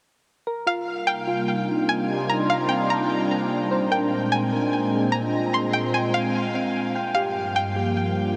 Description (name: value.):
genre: hip hop.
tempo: 148 BPM.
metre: 4/4.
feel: half-time.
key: C minor.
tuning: A4 = 440 Hz.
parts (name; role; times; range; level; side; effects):
sweeping resonant pad; sustained chords; 1.2-8.4 s; G2 to F4; -26 LUFS; equal; chorus.
soft electric-piano-like synth keys; arpeggios; 0.5-8.4 s; C4 to G5; -32 LUFS; equal; chorus, low-pass filter, delay.
string-like resonator pluck; melody; 0.7-8.3 s; F5 to C6; -28 LUFS; equal; chorus, low-pass filter, delay.
room: wet huge ambient reverb, RT60 7.5 s.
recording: dreamy mix soaked in reverb.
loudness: -24 LUFS.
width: mono.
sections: 0.5-8.4 A section.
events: none.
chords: 0.5 Cm11; 3.7 Bb9; 7.0 Gm7.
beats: | 0.47 0.87 1.28 1.68 | 2.09 2.49 2.90 3.30 | 3.71 4.12 4.52 4.93 | 5.33 5.74 6.14 6.55 | 6.95 7.36 7.76 8.17.